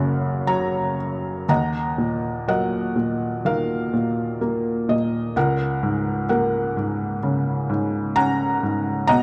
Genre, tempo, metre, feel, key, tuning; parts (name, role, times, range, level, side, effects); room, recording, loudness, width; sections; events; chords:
classical, lyrical solo piano; 57-66 BPM; 4/4; rubato; Eb minor; A4 = 440 Hz
felt-muted upright piano; solo; 0.0-9.2 s; Gb1 to Bb5; -22 LUFS; equal
light reverb; dark, warm production; -23 LUFS; mono
0.0-1.5 A section; 1.5-9.2 B section
0.0 Gb; 1.5 Ebm; 5.4 Gbadd9/Db